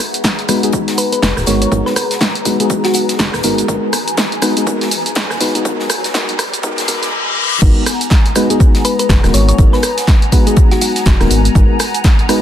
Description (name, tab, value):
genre	deep house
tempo	122 BPM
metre	4/4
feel	swing 59% on 16ths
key	G# minor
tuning	A4 = 441 Hz
part	hollow soft pad	sustained chords	0.0-12.4 s	B3 to A#5	-23 LUFS	left 1 dB	ensemble chorus, sidechain pumping
part	punchy analog drum machine	drums	0.0-12.4 s	crash cymbal, hi-hat, rim click, shaker, snare drum	-18 LUFS	right 1 dB	none
part	riser and reverse cymbal	sound effects	1.1-7.6 s	none	-23 LUFS	left 2 dB	none
part	electronic kick drum	drums	0.2-12.2 s	none	-12 LUFS	equal	high-pass filter on kick, high-pass filter on room
part	tight funk drum kit	drums	0.2-12.4 s	hi-hat, snare drum	-27 LUFS	left 4 dB	high-pass filter on hats, soft clipping on snare, high-pass filter on snare, high-pass filter on room
part	mellow FM electric piano	stabs	0.5-12.4 s	G#3 to B4	-18 LUFS	left 1 dB	chorus, sidechain pumping, low-pass filter, digital delay
part	thumb-piano-like synth pluck	melody	1.0-3.0, 8.8-10.9 s	F#4 to C#5	-20 LUFS	equal	chorus, cassette tape, ping-pong delay
part	rubbery square bass	bass	1.2-11.7 s	D#1 to C#2	-16 LUFS	equal	none
room	light reverb, digital ambience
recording	dense, heavily limited modern master, high-pass filter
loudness	-11 LUFS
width	side -10 dB against mid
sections	0.0-7.6 A section; 7.6-12.4 B section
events	build-up 0.0-7.6; filter sweep on FM electric piano 0.0-7.6; filter sweep on analog synth pad 0.0-7.6; filter sweep 0.0-7.6; riser 1.1-7.1; reverse cymbal 6.6-7.6; drop 7.6-12.4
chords	0.0 G#m9; 7.4 N.C.; 7.6 G#m9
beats	0.24 0.73 1.23 | 1.72 2.21 2.70 3.19 | 3.68 4.18 4.67 5.16 | 5.65 6.14 6.63 7.13 | 7.62 8.11 8.60 9.09 | 9.59 10.08 10.57 11.06 | 11.55 12.04